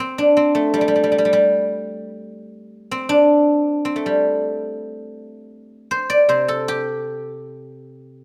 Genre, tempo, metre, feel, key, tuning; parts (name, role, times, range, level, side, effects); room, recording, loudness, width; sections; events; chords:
chinese traditional, Chinese solo plucked strings; 77-86 BPM; 2/4; rubato; A4 = 440 Hz
guzheng; solo; 0.0-8.2 s; C3 to D5; -19 LUFS; equal
little or no reverb; close, detailed microphones; -18 LUFS; mono
0.0-4.8 A section; 4.8-8.2 A section